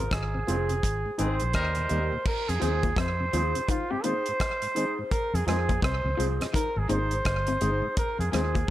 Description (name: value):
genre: roots reggae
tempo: 84 BPM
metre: 4/4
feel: swing 62% on 16ths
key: unclear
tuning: A4 = 441 Hz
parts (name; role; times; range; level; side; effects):
- warm flugelhorn; melody; 0.0-8.7 s; F4 to C5; -30 LUFS; right 2 dB; dub echo
- tonewheel organ; accompaniment; 0.0-8.4 s; Eb2 to C4; -35 LUFS; left 1 dB; slow rotary speaker
- vintage muted fingered electric bass; bass; 0.0-8.6 s; F1 to F2; -29 LUFS; equal; none
- damped 70s drum kit; drums; 0.1-8.7 s; crash cymbal, hi-hat, kick drum, rim click; -30 LUFS; equal; slapback echo
- mellow electric guitar; accompaniment; 0.3-8.6 s; Eb4 to Eb5; -34 LUFS; right 1 dB; vibrato effect, dub echo
- clear horn section; second line; 1.2-2.1 s; Eb3 to Bb4; -35 LUFS; left 2 dB; dub echo
- electric guitar through a small old amp; arpeggios; 2.6-8.6 s; Ab2 to F3; -35 LUFS; left 7 dB; none
room: moderate spring reverb, RT60 1.9 s, small room ambience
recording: none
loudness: -24 LUFS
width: side -14 dB against mid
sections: 0.0-2.3 A section; 2.3-8.7 B section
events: band accent 0.0-2.3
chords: 0.0 Fm; 0.8 Ab; 1.5 Eb; 2.3 Fm; 3.7 Ab; 5.1 Fm; 6.5 Ab; 8.0 Fm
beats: 0.12 0.83 1.55 | 2.26 2.97 3.69 4.40 | 5.12 5.83 6.54 7.26 | 7.97 8.69